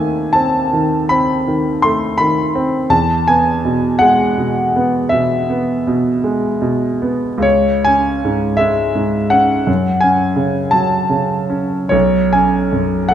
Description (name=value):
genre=classical, romantic nocturne for solo piano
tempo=46-57 BPM (dotted quarters)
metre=12/8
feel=rubato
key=E major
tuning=A4 = 440 Hz
part: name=clear concert grand piano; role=solo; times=0.0-13.1 s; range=B1 to C6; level=-13 LUFS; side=equal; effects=none
room=wet recital hall reverb, RT60 1.4 s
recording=minimal, uncompressed stereo recording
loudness=-13 LUFS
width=side -10 dB against mid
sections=0.0-13.1 A section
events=none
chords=0.0 B13b9/D#; 2.9 E; 7.4 C#m; 9.7 F#m; 11.9 Bsus2